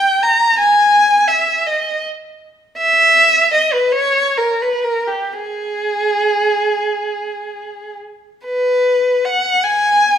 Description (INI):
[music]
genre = classical, free, expressive piece for unaccompanied violin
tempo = 28-56 BPM (dotted quarters)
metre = 6/8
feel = rubato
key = G# minor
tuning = A4 = 440 Hz
[part]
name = rich violin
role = solo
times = 0.0-10.2 s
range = G4 to A#5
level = -13 LUFS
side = equal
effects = none
[sound]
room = moderate recital hall reverb, RT60 1.4 s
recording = minimal, uncompressed stereo recording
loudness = -12 LUFS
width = side -9 dB against mid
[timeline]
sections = 0.0-8.5 A section; 8.5-10.2 B section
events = none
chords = none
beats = | 0.58 1.66 | 2.77 3.94 | 5.32 6.79 | 8.48 9.64